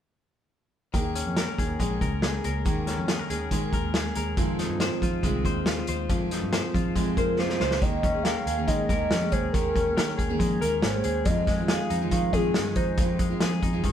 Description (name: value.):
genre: jangly indie pop.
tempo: 139 BPM.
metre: 4/4.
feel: straight.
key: unclear.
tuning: A4 = 438 Hz.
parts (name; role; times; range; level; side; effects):
picked steel-string acoustic guitar; accompaniment; 0.9-13.9 s; F2 to Ab4; -32 LUFS; right 4 dB; none.
direct-recorded clean electric guitar; arpeggios; 0.9-13.9 s; F2 to C5; -32 LUFS; left 6 dB; spring reverb.
vintage muted picked electric bass; bass; 0.9-13.9 s; Ab1 to F3; -30 LUFS; equal; none.
vintage drum kit; drums; 0.9-13.9 s; hi-hat, kick drum, snare drum; -27 LUFS; equal; none.
hollow clarinet-like synth lead; melody; 7.2-13.2 s; Ab4 to F5; -28 LUFS; equal; chorus.
room: light reverb.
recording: band playing live in one room.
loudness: -23 LUFS.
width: side -9 dB against mid.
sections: 0.9-7.8 A section; 7.8-13.9 B section.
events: drum fill 7.4-7.8.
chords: 0.9 Eb7sus4; 4.4 Fm7; 7.8 Eb7sus4; 11.3 Fm7.